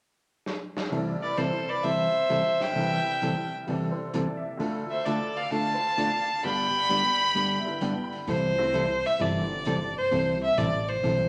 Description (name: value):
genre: country, western swing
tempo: 131 BPM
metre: 4/4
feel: swing 68% on 8ths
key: C major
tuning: A4 = 440 Hz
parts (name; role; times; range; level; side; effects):
- vintage drum kit; drums; 0.5-11.2 s; hi-hat, snare drum; -43 LUFS; equal; none
- hollow-body jazz guitar; accompaniment; 0.9-11.3 s; G2 to A4; -32 LUFS; equal; none
- honky-tonk upright piano; accompaniment; 0.9-8.7 s; C2 to B5; -40 LUFS; equal; none
- clear fiddle; melody; 1.2-11.3 s; C5 to B5; -28 LUFS; equal; none
- clear fiddle; second line; 1.2-8.1 s; A4 to G5; -36 LUFS; equal; none
- upright bass; bass; 8.3-11.3 s; G1 to C2; -36 LUFS; equal; none
room: wet large studio reverb, RT60 1.2 s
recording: none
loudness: -27 LUFS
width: mono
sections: 0.9-8.3 A section; 8.3-11.3 B section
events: drum fill 0.5-0.9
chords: 0.0 N.C.; 0.9 C6; 2.8 Am7/C; 4.6 Dm; 6.4 G; 8.3 C6; 10.1 Am7